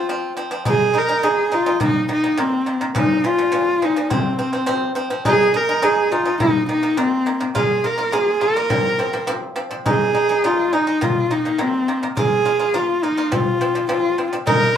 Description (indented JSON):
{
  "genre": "mongolian traditional, Mongolian folk",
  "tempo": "104 BPM",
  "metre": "4/4",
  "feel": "straight",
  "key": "F yu mode",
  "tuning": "A4 = 440 Hz",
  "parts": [
    { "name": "rich horsehead fiddle", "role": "melody", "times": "0.0-14.8 s", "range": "C4 to Bb4", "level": "-18 LUFS", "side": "equal", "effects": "none" },
    { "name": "pipa", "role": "arpeggios", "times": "0.0-14.7 s", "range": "Bb2 to F4", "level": "-23 LUFS", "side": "right 1 dB", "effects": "none" },
    { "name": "frame drum", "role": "percussion", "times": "0.7-14.6 s", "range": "none", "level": "-25 LUFS", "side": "left 2 dB", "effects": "none" }
  ],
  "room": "moderate studio ambience, RT60 0.5 s",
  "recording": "band playing live in one room",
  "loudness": "-16 LUFS",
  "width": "side -9 dB against mid",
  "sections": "0.7-14.8 A section",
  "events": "none",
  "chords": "0.0 F5; 0.7 Ab5; 1.8 Eb5; 3.0 Bb5; 4.1 F5; 5.3 Ab5; 6.4 Eb5; 7.6 Bb5; 8.7 F5; 9.9 Ab5; 11.0 Eb5; 12.2 Bb5; 13.3 F5"
}